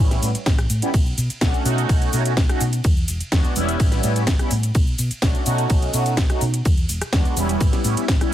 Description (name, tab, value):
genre	filtered disco house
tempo	126 BPM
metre	4/4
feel	straight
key	unclear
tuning	A4 = 440 Hz
part	mellow synth brass	accompaniment	0.0-8.3 s	G3 to F#4	-24 LUFS	right 1 dB	chorus, phaser, sidechain pumping
part	hollow-body short-scale fingered electric bass	bass	0.0-8.2 s	E1 to B2	-23 LUFS	equal	sidechain pumping
part	house drum kit	drums	0.1-8.3 s	hi-hat, ride cymbal, rim click, shaker, snare drum	-26 LUFS	equal	sidechain pumping on hats, sidechain pumping on perc, sidechain pumping on cymbals
part	electronic kick drum	drums	0.5-8.2 s	none	-19 LUFS	equal	none
room	little or no reverb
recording	none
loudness	-17 LUFS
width	side -12 dB against mid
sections	0.0-8.3 A section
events	none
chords	0.0 A7; 0.9 Bm7; 1.9 B7; 2.8 E7; 3.8 A7; 4.8 Bm7; 5.7 B7; 6.7 E7; 7.6 A7